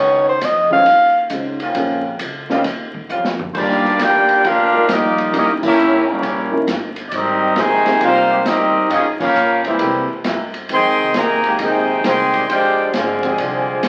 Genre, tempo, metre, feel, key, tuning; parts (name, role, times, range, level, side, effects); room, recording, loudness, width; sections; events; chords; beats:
jazz, big band swing; 134 BPM; 4/4; swing 66% on 8ths; Eb major from 3.5 s; A4 = 440 Hz
breathy alto saxophone; melody; 0.0-1.3 s; C5 to F5; -14 LUFS; equal
warm trombone section; sustained chords; 0.0-13.8 s; C3 to Ab4; -26 LUFS; equal
upright bass; bass; 0.0-13.9 s; G1 to C3; -37 LUFS; equal
open jazz drum kit; drums; 0.4-13.9 s; crash cymbal, hi-hat, kick drum, ride cymbal, snare drum, toms; -27 LUFS; equal
dark upright piano; accompaniment; 0.7-13.4 s; F3 to Eb5; -25 LUFS; equal
warm trumpet section; melody; 3.5-13.9 s; Bb3 to C6; -19 LUFS; equal
mellow trombone section; second line; 3.5-13.9 s; C3 to G4; -21 LUFS; equal
wet large studio reverb, RT60 0.9 s; very old 78 rpm record, vinyl crackle; -16 LUFS; mono
0.0-3.5 A section; 3.5-13.9 B section
alto saxophone solo 0.0-3.5; drum fill 3.1-3.5; band accent 5.6, 9.1
0.0 Dbmaj9; 1.8 Bbm9; 2.6 Eb13; 3.5 Ebmaj9; 5.3 Eb7b9; 7.1 Abmaj9; 8.9 Gm7b5; 9.8 C7b13; 10.7 Fm11 (rootless); 12.5 Bb13
0.41 0.86 1.31 | 1.76 2.20 2.65 3.10 | 3.54 3.99 4.44 4.88 | 5.33 5.78 6.23 6.67 | 7.12 7.57 8.01 8.46 | 8.91 9.35 9.80 10.25 | 10.70 11.14 11.59 12.04 | 12.48 12.93 13.38 13.82